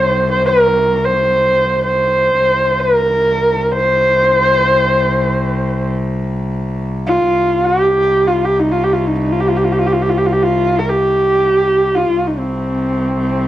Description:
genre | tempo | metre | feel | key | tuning
mongolian traditional, Mongolian folk | free time | none | none | unclear | A4 = 439 Hz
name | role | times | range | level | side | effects
warm horsehead fiddle | melody | 0.0-13.5 s | C4 to C5 | -13 LUFS | equal | cassette tape, plate reverb
rich cello | drone | 0.0-13.5 s | C2 | -20 LUFS | equal | stereo widening
room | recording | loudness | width
wet studio reverb, RT60 0.6 s | home recording on cassette | -12 LUFS | side -13 dB against mid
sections
0.0-13.5 A section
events
slowing down 12.1-13.5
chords
none

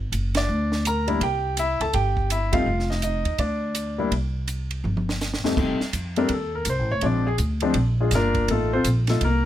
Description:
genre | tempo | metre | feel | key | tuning
jazz piano trio | 165 BPM | 4/4 | swing 63% on 8ths | F mixolydian | A4 = 439 Hz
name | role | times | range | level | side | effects
upright bass | bass | 0.0-9.5 s | F1 to F2 | -25 LUFS | equal | none
compact cocktail drum kit | drums | 0.1-9.3 s | crash cymbal, hi-hat, kick drum, ride cymbal, snare drum, toms | -29 LUFS | right 2 dB | none
warm concert grand piano | melody | 0.4-9.5 s | F2 to Bb5 | -24 LUFS | left 2 dB | none
room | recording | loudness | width
light reverb | none | -21 LUFS | side -12 dB against mid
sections
0.0-5.6 A section; 5.6-9.5 B section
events
band accent 0.3, 2.5; drum fill 4.8-5.6; grand piano solo 5.6-9.5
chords
0.0 Gm (rootless); 1.2 C; 2.7 Ebsus2/F; 3.4 N.C.; 4.1 C5; 5.6 F7; 7.0 Bb7; 8.5 F7

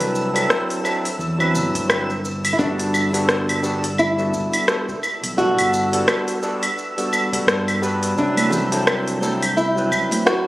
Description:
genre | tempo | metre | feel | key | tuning
sunset chillout | 86 BPM | 4/4 | swing 58% on 16ths | G major | A4 = 440 Hz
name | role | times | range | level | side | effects
flamenco guitar | melody | 0.0-10.5 s | D4 to B4 | -23 LUFS | equal | tape echo, shimmer reverb
overdriven tine electric piano | accompaniment | 0.0-10.5 s | F#3 to B4 | -23 LUFS | equal | auto-pan, tape echo, shimmer reverb
overdriven fingered electric bass | bass | 0.0-10.0 s | G1 to G2 | -26 LUFS | equal | none
smooth R&B drum kit | drums | 0.0-10.4 s | cabasa, claves, hi-hat, rim click | -22 LUFS | equal | none
twinkling granular texture | texture | 0.0-10.5 s | E6 to G6 | -32 LUFS | equal | built-in reverb, shimmer reverb
electronic kick drum | drums | 1.7-10.1 s | none | -35 LUFS | equal | none
congas and bongos | percussion | 8.4-10.2 s | none | -26 LUFS | right 2 dB | none
room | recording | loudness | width
moderate plate reverb, RT60 2.0 s | recorded on a phone in the room, studio reverb, compression | -17 LUFS | side -17 dB against mid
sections
0.0-10.5 A section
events
none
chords
0.0 Cmaj9#11; 2.6 Gmaj9; 8.2 Cmaj9#11

